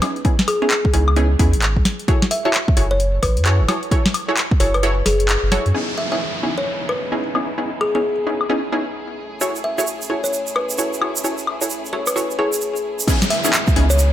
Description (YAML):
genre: UK garage, two-step garage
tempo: 131 BPM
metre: 4/4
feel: swing 62% on 16ths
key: C# minor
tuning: A4 = 441 Hz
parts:
  - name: punchy chord stab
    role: stabs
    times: 0.0-13.9 s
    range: B3 to C#5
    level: -23 LUFS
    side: equal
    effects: chorus, ping-pong delay
  - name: punchy analog drum machine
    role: drums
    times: 0.0-14.1 s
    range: crash cymbal, handclaps, hi-hat, snare drum, woodblock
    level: -21 LUFS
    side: left 2 dB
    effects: overdrive, low-pass filter on hats, low-pass filter on snare, low-pass filter on perc, low-pass filter on cymbals
  - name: electronic kick drum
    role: drums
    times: 0.2-4.6, 13.1-13.7 s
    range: none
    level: -17 LUFS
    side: equal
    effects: overdrive
  - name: kalimba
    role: melody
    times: 0.5-14.1 s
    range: G#4 to E5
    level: -24 LUFS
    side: left 1 dB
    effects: ping-pong delay
  - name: soft dub sub bass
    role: bass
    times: 0.9-5.7, 13.8-14.1 s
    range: F#1 to F#2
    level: -17 LUFS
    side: equal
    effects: none
  - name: warm studio violin section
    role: sustained chords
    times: 5.7-14.1 s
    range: A3 to G#4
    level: -32 LUFS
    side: left 1 dB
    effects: sidechain pumping, low-pass filter
  - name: downlifter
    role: sound effects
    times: 5.7-9.4, 13.1-14.1 s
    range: none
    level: -27 LUFS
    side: equal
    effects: none
  - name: egg shaker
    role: percussion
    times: 9.4-14.1 s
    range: none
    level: -25 LUFS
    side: right 6 dB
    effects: none
room: light reverb, digital ambience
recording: faint mains hum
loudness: -16 LUFS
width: side -12 dB against mid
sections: 0.0-5.7 A section; 5.7-13.1 B section; 13.1-14.1 C section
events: kick drops out 4.8-5.7; band accent 5.3; filter sweep on drum 5.7-13.1; filter sweep on violin section 5.7-13.1; drop 13.1-14.1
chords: 0.0 C#m9; 1.9 F#m9; 5.7 C#m9; 9.2 F#m9; 13.1 C#m9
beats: | 0.25 0.71 1.17 1.62 | 2.08 2.54 3.00 3.46 | 3.92 4.37 4.83 5.29 | 5.75 6.21 6.66 7.12 | 7.58 8.04 8.49 8.95 | 9.41 9.87 10.33 10.79 | 11.24 11.70 12.16 12.62 | 13.07 13.53 13.99